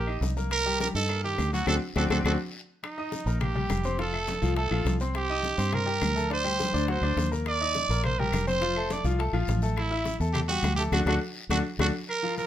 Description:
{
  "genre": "latin, salsa",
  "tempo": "208 BPM",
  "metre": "4/4",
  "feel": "straight",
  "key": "unclear",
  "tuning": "A4 = 439 Hz",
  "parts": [
    { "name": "growling trumpet", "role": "melody", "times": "0.0-12.5 s", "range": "Eb4 to D5", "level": "-29 LUFS", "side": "right 4 dB", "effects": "none" },
    { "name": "bright upright piano", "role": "accompaniment", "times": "0.0-12.5 s", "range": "D3 to E6", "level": "-32 LUFS", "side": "left 3 dB", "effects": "none" },
    { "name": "fingered electric bass", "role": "bass", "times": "0.0-11.9 s", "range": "F1 to G2", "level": "-28 LUFS", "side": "equal", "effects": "none" },
    { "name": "claves", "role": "percussion", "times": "0.1-12.2 s", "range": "none", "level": "-40 LUFS", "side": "left 3 dB", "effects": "none" },
    { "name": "congas", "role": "percussion", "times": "0.1-12.5 s", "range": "none", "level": "-36 LUFS", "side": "left 1 dB", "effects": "none" },
    { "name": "bongos", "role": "percussion", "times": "0.2-11.9 s", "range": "none", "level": "-36 LUFS", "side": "left 6 dB", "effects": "none" },
    { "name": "guiro", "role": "percussion", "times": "0.2-12.5 s", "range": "none", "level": "-46 LUFS", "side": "left 5 dB", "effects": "none" }
  ],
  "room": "light reverb",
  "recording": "minimal, uncompressed stereo recording",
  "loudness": "-25 LUFS",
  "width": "side -11 dB against mid",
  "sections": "0.0-2.8 A section; 2.8-12.1 B section",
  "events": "band accent 1.7-2.8, 10.9-12.1; drum fill 2.4-2.8, 10.9-12.1",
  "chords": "0.0 Eb; 0.5 Cm7; 1.7 D7; 2.8 Eb; 4.0 F; 5.1 Cm; 6.3 D7sus4; 6.9 D7; 7.5 Ebadd9; 8.6 F; 9.8 A5; 10.9 D"
}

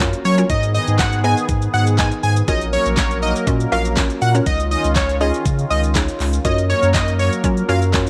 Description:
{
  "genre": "dance-pop",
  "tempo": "121 BPM",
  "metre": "4/4",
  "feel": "straight",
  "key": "F# major",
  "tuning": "A4 = 440 Hz",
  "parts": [
    { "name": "hollow square pluck", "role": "accompaniment", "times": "0.0-8.1 s", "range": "B3 to D#5", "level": "-26 LUFS", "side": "equal", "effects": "chorus, sidechain pumping" },
    { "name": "warm analog pad", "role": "sustained chords", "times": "0.0-8.1 s", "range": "D#3 to A#4", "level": "-28 LUFS", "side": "equal", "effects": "chorus, sidechain pumping" },
    { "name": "saturated sub bass", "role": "bass", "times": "0.0-8.1 s", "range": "A#1 to F#3", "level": "-21 LUFS", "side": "equal", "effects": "sidechain pumping" },
    { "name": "pop drum kit", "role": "drums", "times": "0.0-8.1 s", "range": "handclaps, hi-hat, kick drum, shaker, snare drum", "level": "-24 LUFS", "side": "equal", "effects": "none" },
    { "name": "impact", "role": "sound effects", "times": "0.3-0.5 s", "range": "none", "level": "-49 LUFS", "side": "equal", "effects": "none" },
    { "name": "plucky unison lead", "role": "melody", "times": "0.2-7.8 s", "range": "C#5 to G#5", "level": "-23 LUFS", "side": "equal", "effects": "sidechain pumping, slapback echo" }
  ],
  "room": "light reverb, digital ambience",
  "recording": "none",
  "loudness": "-17 LUFS",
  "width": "mono",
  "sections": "0.0-8.1 A section",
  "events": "impact 0.0-0.5",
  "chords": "0.5 G#m; 2.5 F#maj7/A#; 4.5 C#add9; 6.4 F#maj7"
}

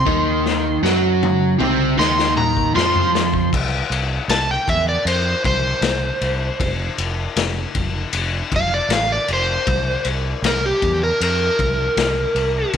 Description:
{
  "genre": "blues rock power trio and southern rock",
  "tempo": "78 BPM",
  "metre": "4/4",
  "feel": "straight",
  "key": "unclear",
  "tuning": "A4 = 440 Hz",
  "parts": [
    { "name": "overdriven slide guitar", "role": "melody", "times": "0.0-12.7 s", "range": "G4 to C6", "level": "-20 LUFS", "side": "equal", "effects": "none" },
    { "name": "overdriven semi-hollow guitar", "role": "riff", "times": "0.0-3.5 s", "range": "C3 to Gb4", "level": "-19 LUFS", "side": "right 2 dB", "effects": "none" },
    { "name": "growling fingered electric bass", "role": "bass", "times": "0.0-12.8 s", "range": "F1 to Gb2", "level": "-23 LUFS", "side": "right 1 dB", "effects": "overdrive" },
    { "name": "raw garage drum kit", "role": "drums", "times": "0.1-12.8 s", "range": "crash cymbal, kick drum, ride cymbal, snare drum, toms", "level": "-22 LUFS", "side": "left 5 dB", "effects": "none" }
  ],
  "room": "light reverb, studio ambience",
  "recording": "1960s-style stereo",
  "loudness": "-16 LUFS",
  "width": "side -8 dB against mid",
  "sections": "0.0-3.5 A section; 3.5-12.8 B section",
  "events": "drum fill 0.4-3.5; electric slide guitar solo 3.5-12.8",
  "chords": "0.0 Ebm69; 3.5 N.C.; 6.6 F5; 9.7 C7(no3)"
}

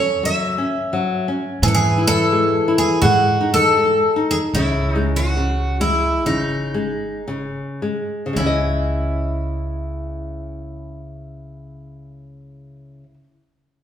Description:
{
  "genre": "fado-style ballad",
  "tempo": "54-87 BPM",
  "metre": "4/4",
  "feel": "rubato",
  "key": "C# minor",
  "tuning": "A4 = 440 Hz",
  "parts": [
    { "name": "picked twelve-string acoustic guitar", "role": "melody", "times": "0.0-13.1 s", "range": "D#4 to E5", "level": "-19 LUFS", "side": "equal", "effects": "none" },
    { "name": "nylon-string guitar", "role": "accompaniment", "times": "0.0-13.2 s", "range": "C#3 to D#5", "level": "-22 LUFS", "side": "left 2 dB", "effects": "none" },
    { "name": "upright bass", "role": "bass", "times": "0.0-13.1 s", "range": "G#1 to G#2", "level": "-23 LUFS", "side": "right 1 dB", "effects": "none" }
  ],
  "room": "wet large studio reverb, RT60 1.3 s",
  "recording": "band playing live in one room",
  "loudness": "-17 LUFS",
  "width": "side -9 dB against mid",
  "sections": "0.0-8.4 A section; 8.4-12.7 B section",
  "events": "slowing down 1.6-8.4",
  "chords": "0.0 F#5; 1.6 Eadd11/G#; 3.0 G#5; 4.5 C#sus2; 8.4 C#madd9"
}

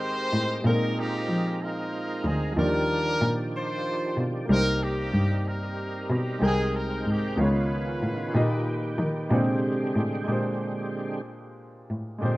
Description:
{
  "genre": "gospel",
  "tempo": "62 BPM (dotted quarters)",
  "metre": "6/8",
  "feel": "straight",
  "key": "unclear",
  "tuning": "A4 = 440 Hz",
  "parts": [
    { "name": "clear horn section", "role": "melody", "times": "0.0-9.7 s", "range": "Ab3 to C5", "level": "-30 LUFS", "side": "equal", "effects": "none" },
    { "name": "warm concert grand piano", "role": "accompaniment", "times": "0.0-12.4 s", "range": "Ab2 to G5", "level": "-30 LUFS", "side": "equal", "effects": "none" },
    { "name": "overdriven tonewheel organ", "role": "sustained chords", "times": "0.0-12.4 s", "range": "D3 to G5", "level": "-32 LUFS", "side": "right 2 dB", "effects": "slow rotary speaker, chorus vibrato" },
    { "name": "dark cello", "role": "bass", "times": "0.0-12.4 s", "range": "C2 to F3", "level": "-27 LUFS", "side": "equal", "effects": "none" }
  ],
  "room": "small room ambience",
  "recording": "rough home demo mix",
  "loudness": "-24 LUFS",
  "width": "side -18 dB against mid",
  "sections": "0.0-10.3 A section; 10.3-12.4 B section",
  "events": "tonewheel organ solo 10.3-12.4",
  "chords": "0.0 Abmaj9; 0.7 Bb9sus4; 2.6 Ebmaj9; 4.5 Cm7; 6.4 Abmaj9/C; 7.4 Db9; 8.4 Eb/Bb; 9.3 Bb13"
}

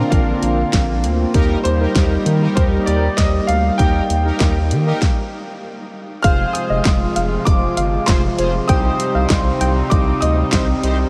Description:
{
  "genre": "synth-pop",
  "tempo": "98 BPM",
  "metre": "4/4",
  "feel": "straight",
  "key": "F dorian",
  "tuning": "A4 = 439 Hz",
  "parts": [
    { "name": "clear concert grand piano", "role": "melody", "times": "0.0-10.8 s", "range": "C5 to F6", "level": "-27 LUFS", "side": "equal", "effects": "lush chorus, delay" },
    { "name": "analog synth brass", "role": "accompaniment", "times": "0.0-11.0 s", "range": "D4 to C5", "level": "-28 LUFS", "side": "equal", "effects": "chorus" },
    { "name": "chorused pulse-width pad", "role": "sustained chords", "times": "0.0-11.1 s", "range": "C3 to G4", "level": "-24 LUFS", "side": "equal", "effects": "none" },
    { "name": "round analog bass", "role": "bass", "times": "0.0-11.0 s", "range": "F1 to Eb3", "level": "-21 LUFS", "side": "equal", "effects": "none" },
    { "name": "pop drum kit", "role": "drums", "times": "0.1-11.0 s", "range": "handclaps, hi-hat, kick drum, snare drum", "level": "-21 LUFS", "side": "equal", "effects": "none" },
    { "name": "soft round pluck", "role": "second line", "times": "6.2-10.4 s", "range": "Eb5 to G5", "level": "-27 LUFS", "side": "equal", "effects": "chorus, delay" }
  ],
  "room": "wet huge ambient reverb, RT60 8.5 s",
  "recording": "dreamy mix soaked in reverb",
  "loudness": "-17 LUFS",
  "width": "mono",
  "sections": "0.0-6.2 A section; 6.2-11.1 B section",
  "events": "stop 5.0-6.2",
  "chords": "0.0 Bbadd9; 1.3 Eb; 6.2 Fm; 8.7 Cm"
}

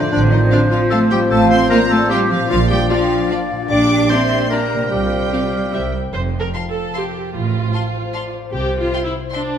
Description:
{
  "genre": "cinematic, playful, whimsical film cue",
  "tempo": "151 BPM",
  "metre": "3/4",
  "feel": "straight",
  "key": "F major",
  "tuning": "A4 = 440 Hz",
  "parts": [
    { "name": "mellow large flute ensemble", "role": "second line", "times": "0.0-5.9 s", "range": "C5 to G5", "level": "-25 LUFS", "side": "right 1 dB", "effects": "none" },
    { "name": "rich chamber violin section", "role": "second line", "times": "0.0-9.4 s", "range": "D5 to D6", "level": "-25 LUFS", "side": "left 2 dB", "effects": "none" },
    { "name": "warm oboe", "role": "second line", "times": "0.0-5.9 s", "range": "C5 to F5", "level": "-25 LUFS", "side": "right 1 dB", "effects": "none" },
    { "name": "warm bassoon", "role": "accompaniment", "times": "0.0-5.9 s", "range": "F3 to A3", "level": "-23 LUFS", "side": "left 1 dB", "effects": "none" },
    { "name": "mellow French horn section", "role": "sustained chords", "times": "0.0-5.9 s", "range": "C4 to G4", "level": "-25 LUFS", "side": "left 5 dB", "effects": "none" },
    { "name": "concert harp", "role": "arpeggios", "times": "0.0-9.6 s", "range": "F2 to F5", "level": "-25 LUFS", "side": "left 5 dB", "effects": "none" },
    { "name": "rich studio cello section", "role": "bass", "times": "0.0-8.9 s", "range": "F2 to D4", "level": "-21 LUFS", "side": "right 2 dB", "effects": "none" },
    { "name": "warm clarinet", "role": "second line", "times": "0.1-5.9 s", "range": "D4 to D5", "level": "-22 LUFS", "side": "left 1 dB", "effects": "none" },
    { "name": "rich studio double bass section", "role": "bass", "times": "0.1-8.9 s", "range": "F1 to C2", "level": "-21 LUFS", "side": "right 3 dB", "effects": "none" },
    { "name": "warm chamber violin section", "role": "melody", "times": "0.5-9.4 s", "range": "D5 to C6", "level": "-31 LUFS", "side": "left 4 dB", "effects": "none" },
    { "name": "rich chamber viola section", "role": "accompaniment", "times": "0.5-9.6 s", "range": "C4 to C5", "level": "-26 LUFS", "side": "right 2 dB", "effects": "none" }
  ],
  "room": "moderate scoring stage reverb, RT60 1.5 s",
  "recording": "none",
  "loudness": "-14 LUFS",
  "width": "side -8 dB against mid",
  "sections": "0.0-6.1 A section; 6.1-9.6 B section",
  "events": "none",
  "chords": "0.1 F/A; 2.5 Bb; 3.7 Gm/Bb; 4.9 Csus4; 5.7 C; 6.1 F; 7.3 F/A; 8.5 C"
}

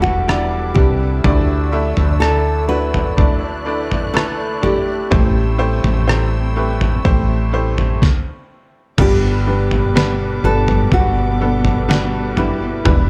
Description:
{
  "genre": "pop ballad",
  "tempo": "62 BPM",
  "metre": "4/4",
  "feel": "straight",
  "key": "G major",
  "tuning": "A4 = 440 Hz",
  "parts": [
    { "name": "nylon-string guitar", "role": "melody", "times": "0.0-13.1 s", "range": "E4 to B4", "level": "-24 LUFS", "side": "equal", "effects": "none" },
    { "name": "bright upright piano", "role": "accompaniment", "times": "0.0-13.1 s", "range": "G2 to F#5", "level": "-24 LUFS", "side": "equal", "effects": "none" },
    { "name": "dark studio string section", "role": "sustained chords", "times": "0.0-13.1 s", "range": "C4 to F#6", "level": "-34 LUFS", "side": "equal", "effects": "none" },
    { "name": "direct-recorded clean electric guitar", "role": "arpeggios", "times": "0.0-13.1 s", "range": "E2 to G4", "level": "-32 LUFS", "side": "equal", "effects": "none" },
    { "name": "woody fretless electric bass", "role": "bass", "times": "0.0-13.1 s", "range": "E1 to D2", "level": "-21 LUFS", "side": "equal", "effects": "none" },
    { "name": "trip hop sampler-style drum kit", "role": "drums", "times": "0.0-13.1 s", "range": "crash cymbal, kick drum, rim click, snare drum, toms", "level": "-20 LUFS", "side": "equal", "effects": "none" },
    { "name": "dark studio cello section", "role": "second line", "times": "9.0-13.1 s", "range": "B2 to B3", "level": "-27 LUFS", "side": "equal", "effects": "none" }
  ],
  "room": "small room ambience",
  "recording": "none",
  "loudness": "-16 LUFS",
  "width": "mono",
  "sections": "0.0-9.0 A section; 9.0-13.1 B section",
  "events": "stop 8.0-9.0",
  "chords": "0.0 Em7; 1.2 Dsus2; 5.1 Am7; 9.0 G"
}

